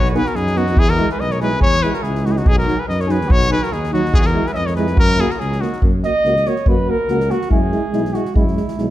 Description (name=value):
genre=balkan folk, Balkan brass band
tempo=142 BPM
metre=2/4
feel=swing 54% on 16ths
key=F# mixolydian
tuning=A4 = 436 Hz
part: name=warm trumpet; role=melody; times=0.0-5.8 s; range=F#4 to E5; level=-20 LUFS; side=left 2 dB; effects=none
part: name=mellow flugelhorn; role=second line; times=0.0-8.9 s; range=C#4 to D#5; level=-23 LUFS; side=right 2 dB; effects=none
part: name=mellow tuba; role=bass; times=0.0-8.9 s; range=B1 to F#2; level=-21 LUFS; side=equal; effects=none
part: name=soft-mallet drum kit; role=percussion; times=0.0-8.8 s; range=kick drum, snare drum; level=-18 LUFS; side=equal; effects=none
part: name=mellow euphonium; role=accompaniment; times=0.1-8.9 s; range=F#3 to B3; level=-25 LUFS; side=right 4 dB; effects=none
part: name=warm euphonium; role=accompaniment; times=0.1-8.9 s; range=D#4 to F#4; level=-26 LUFS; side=left 4 dB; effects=none
room=light reverb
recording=none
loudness=-14 LUFS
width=side -14 dB against mid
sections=0.0-5.8 A section; 5.8-8.9 B section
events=flugelhorn solo 5.8-8.9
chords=0.0 B; 0.8 E; 2.5 B; 4.1 E; 5.0 F#; 7.5 E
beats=0.34 | 0.76 1.19 | 1.61 2.03 | 2.45 2.87 | 3.30 3.72 | 4.14 4.56 | 4.99 5.41 | 5.83 6.25 | 6.68 7.10 | 7.52 7.94 | 8.36 8.78